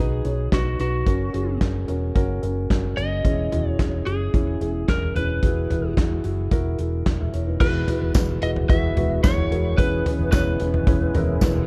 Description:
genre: piano-driven pop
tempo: 110 BPM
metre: 4/4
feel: straight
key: unclear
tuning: A4 = 440 Hz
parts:
  - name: lightly driven lead guitar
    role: melody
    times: 0.0-11.6 s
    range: F#4 to E5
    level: -31 LUFS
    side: equal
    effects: none
  - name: felt-muted upright piano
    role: accompaniment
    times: 0.0-11.7 s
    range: B2 to E5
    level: -29 LUFS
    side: equal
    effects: none
  - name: fingered electric bass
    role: bass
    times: 0.0-11.6 s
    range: E1 to B1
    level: -28 LUFS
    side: equal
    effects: none
  - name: natural country drum kit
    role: drums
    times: 0.2-11.7 s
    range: crash cymbal, handclaps, hi-hat, kick drum, snare drum, toms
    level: -24 LUFS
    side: equal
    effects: none
  - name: sweeping resonant pad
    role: sustained chords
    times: 7.6-11.7 s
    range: C#3 to F#4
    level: -37 LUFS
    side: equal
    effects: chorus
  - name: tambourine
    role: percussion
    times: 8.1-11.5 s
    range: none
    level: -40 LUFS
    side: equal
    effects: none
room: studio reverb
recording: dark, warm production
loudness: -22 LUFS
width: mono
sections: 0.0-7.6 A section; 7.6-11.7 B section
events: none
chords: 0.0 B; 1.1 F#; 3.2 C#m/E; 5.4 Eadd9; 9.8 C#m7/E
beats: 0.52 | 1.06 1.61 2.16 2.70 | 3.25 3.79 4.34 4.88 | 5.43 5.97 6.51 7.06 | 7.61 8.15 8.69 9.24 | 9.78 10.33 10.87 11.41

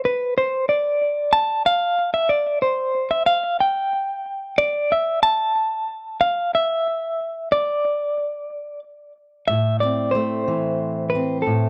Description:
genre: folk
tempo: 61 BPM (dotted quarters)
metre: 6/8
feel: straight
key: A minor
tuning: A4 = 440 Hz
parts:
  - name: clean electric guitar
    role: melody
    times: 0.0-11.7 s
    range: A4 to A5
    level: -22 LUFS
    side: equal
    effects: tremolo, analog delay
  - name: fingerpicked steel-string acoustic guitar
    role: accompaniment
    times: 9.5-11.7 s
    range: A2 to C4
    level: -24 LUFS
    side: equal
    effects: none
room: moderate studio reverb, RT60 0.5 s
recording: cassette tape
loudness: -21 LUFS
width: mono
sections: 0.0-9.5 A section; 9.5-11.7 B section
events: none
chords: 0.0 N.C.; 9.5 Am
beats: 0.68 | 1.66 2.63 | 3.61 4.59 | 5.56 6.54 | 7.53 8.51 | 9.49 10.48 | 11.46

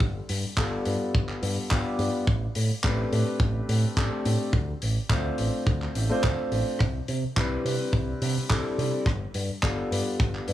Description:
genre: nu-disco, nu disco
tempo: 106 BPM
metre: 4/4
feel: straight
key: unclear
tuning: A4 = 440 Hz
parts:
  - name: fingered electric bass with an envelope filter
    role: bass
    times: 0.0-10.5 s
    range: G1 to C3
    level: -28 LUFS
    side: right 1 dB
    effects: none
  - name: kick drum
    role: drums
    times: 0.0-10.3 s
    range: none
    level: -25 LUFS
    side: equal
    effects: none
  - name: tight funk drum kit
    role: drums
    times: 0.3-10.5 s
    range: handclaps, hi-hat, rim click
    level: -34 LUFS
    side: equal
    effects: none
  - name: warm grand piano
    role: accompaniment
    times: 0.6-10.5 s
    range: G3 to C5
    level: -30 LUFS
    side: left 1 dB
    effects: sidechain pumping, tape echo
room: studio reverb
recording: studio ambience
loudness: -24 LUFS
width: side -13 dB against mid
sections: 0.0-10.5 A section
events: none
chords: 0.0 G9; 2.3 Am11; 4.5 Dm7; 6.8 Cmaj9; 9.1 G9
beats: | 0.01 0.58 1.14 1.71 | 2.28 2.84 3.41 3.97 | 4.54 5.11 5.67 6.24 | 6.80 7.37 7.94 8.50 | 9.07 9.63 10.20

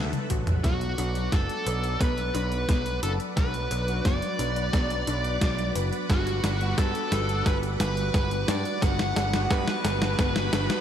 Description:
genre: synthwave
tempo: 88 BPM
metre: 4/4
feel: straight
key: B minor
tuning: A4 = 439 Hz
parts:
  - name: string machine, full ensemble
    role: sustained chords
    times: 0.0-10.8 s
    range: D4 to D6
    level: -38 LUFS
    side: equal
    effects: ensemble chorus, sidechain pumping
  - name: analog pluck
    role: arpeggios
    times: 0.0-10.7 s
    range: B3 to B4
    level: -38 LUFS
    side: left 3 dB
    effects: none
  - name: picked electric bass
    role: bass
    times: 0.0-10.7 s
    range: F#1 to G2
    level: -29 LUFS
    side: equal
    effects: none
  - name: clean 12-bit digital drum machine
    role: drums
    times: 0.1-10.8 s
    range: hi-hat, snare drum, toms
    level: -30 LUFS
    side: equal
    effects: overdrive
  - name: electronic kick drum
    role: drums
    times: 0.3-10.3 s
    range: none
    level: -26 LUFS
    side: equal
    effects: overdrive
  - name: dark smooth lead guitar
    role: melody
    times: 0.6-10.8 s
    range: F#4 to F#5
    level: -30 LUFS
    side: equal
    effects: overdrive, digital delay
  - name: airy dreamy lead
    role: second line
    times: 0.6-10.8 s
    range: F#4 to F#5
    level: -37 LUFS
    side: equal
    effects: chorus
  - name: analog synth brass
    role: stabs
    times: 0.6-10.8 s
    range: F#3 to F#4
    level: -35 LUFS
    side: right 2 dB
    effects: chorus
room: moderate plate reverb, RT60 2.5 s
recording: bright 1980s-style digital production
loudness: -24 LUFS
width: side -9 dB against mid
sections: 0.6-10.8 A section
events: drum fill 0.0-0.6, 0.6-10.8; filter sweep on analog polysynth 0.6-10.8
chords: 0.0 D6; 0.6 Bm; 6.1 Gmaj7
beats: | 0.64 1.32 2.00 2.69 | 3.37 4.05 4.73 5.41 | 6.10 6.78 7.46 8.14 | 8.82 9.51 10.19

